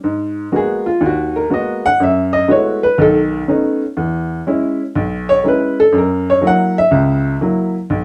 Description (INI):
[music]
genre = solo jazz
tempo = 122 BPM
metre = 4/4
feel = swing 66% on 8ths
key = unclear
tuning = A4 = 438 Hz
[part]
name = warm upright piano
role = solo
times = 0.0-8.0 s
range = B1 to F#5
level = -15 LUFS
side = equal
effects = none
[sound]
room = moderate studio reverb, RT60 0.6 s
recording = band playing live in one room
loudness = -15 LUFS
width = mono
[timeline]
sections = 0.0-8.0 A section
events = upright piano solo 0.0-8.0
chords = 0.0 G#m9; 2.0 F#m11; 3.0 B9; 4.0 E6; 5.9 F#7